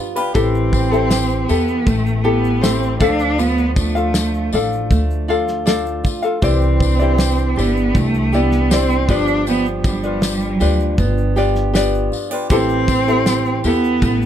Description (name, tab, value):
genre	acoustic pop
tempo	79 BPM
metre	4/4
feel	straight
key	G mixolydian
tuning	A4 = 441 Hz
part	ukulele	accompaniment	0.0-14.3 s	D4 to F5	-21 LUFS	left 4 dB	none
part	fingerpicked steel-string acoustic guitar	arpeggios	0.0-14.3 s	E3 to G4	-24 LUFS	right 5 dB	none
part	cloth-damped thuddy drum kit	drums	0.2-14.3 s	kick drum, shaker, snare drum	-18 LUFS	equal	none
part	upright bass	bass	0.3-14.3 s	G1 to E2	-19 LUFS	equal	none
part	warm cello	melody	0.4-14.3 s	G3 to D4	-19 LUFS	right 2 dB	tape echo
part	tambourine	percussion	0.4-14.2 s	none	-31 LUFS	left 7 dB	none
room	little or no reverb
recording	close, detailed microphones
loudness	-14 LUFS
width	side -10 dB against mid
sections	0.0-14.3 A section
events	none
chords	0.4 Am7; 3.0 Dm; 6.4 Cadd9; 9.1 G7; 12.5 Am7